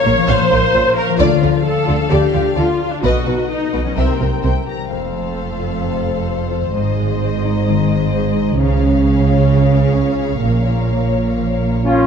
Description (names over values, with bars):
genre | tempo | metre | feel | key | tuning
cinematic, heroic adventure film score | 130 BPM | 4/4 | straight | unclear | A4 = 438 Hz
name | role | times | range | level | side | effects
rich symphonic violin section | melody | 0.0-12.1 s | Db4 to Bb5 | -28 LUFS | left 7 dB | none
warm symphonic violin section | second line | 0.0-12.1 s | F4 to F5 | -24 LUFS | left 4 dB | none
rich symphonic viola section | accompaniment | 0.0-12.1 s | C4 to Db5 | -21 LUFS | equal | none
concert harp | arpeggios | 0.0-12.1 s | F2 to G5 | -21 LUFS | left 10 dB | none
rich symphonic cello section | bass | 0.1-12.1 s | F2 to D3 | -20 LUFS | right 3 dB | none
rich symphonic double bass section | bass | 0.1-12.1 s | F1 to D2 | -19 LUFS | right 4 dB | none
bright clarinet | second line | 11.8-12.1 s | F4 | -24 LUFS | left 3 dB | none
warm trumpet section | stabs | 11.8-12.1 s | Db4 | -15 LUFS | right 2 dB | none
dark cor anglais | second line | 11.9-12.1 s | F4 | -21 LUFS | right 1 dB | none
mellow flute section | second line | 11.9-12.1 s | F5 | -22 LUFS | left 3 dB | none
mellow French horn section | sustained chords | 11.9-12.1 s | F4 | -18 LUFS | left 6 dB | none
room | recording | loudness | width
moderate concert hall reverb, RT60 1.9 s | dark, warm production, nothing above 10.5 kHz | -14 LUFS | side -7 dB against mid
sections
0.0-4.9 A section; 4.9-12.1 B section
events
none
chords
0.0 Bbm; 1.2 Dm; 3.0 B; 4.0 C7; 4.9 F; 6.8 Ab; 8.6 Db; 10.4 Bbm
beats
0.29 0.74 | 1.20 1.66 2.12 2.58 | 3.04 3.50 3.97 4.45 | 4.92 5.38 5.84 6.30 | 6.76 7.22 7.68 8.14 | 8.59 9.05 9.51 9.97 | 10.44 10.91 11.39 11.86